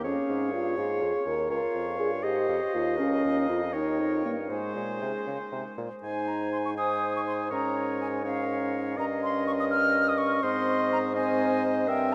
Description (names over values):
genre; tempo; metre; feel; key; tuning
quick classical-period movement for wind quintet; 82 BPM (dotted quarters); 6/8; straight; Ab major; A4 = 440 Hz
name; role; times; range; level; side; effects
mellow concert flute; melody; 0.0-12.1 s; F5 to F6; -34 LUFS; equal; none
warm oboe; second line; 0.0-12.1 s; C5 to Ab5; -35 LUFS; equal; none
clear clarinet; accompaniment; 0.0-12.1 s; F4 to C5; -38 LUFS; equal; none
mellow French horn; accompaniment; 0.0-12.1 s; Ab3 to Bb4; -33 LUFS; equal; none
warm bassoon; bass; 0.0-12.1 s; Db2 to Db3; -36 LUFS; equal; none
room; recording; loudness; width
wet cathedral reverb, RT60 5.4 s; in a vast, echoing space; -28 LUFS; mono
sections
0.0-6.0 A section; 6.0-12.1 B section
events
none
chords
0.1 Db/F; 1.5 Db; 3.0 Bbm/Db; 3.7 Eb7; 4.5 Ab; 7.5 Bbm7/Ab; 9.0 Eb7/G; 10.4 Ab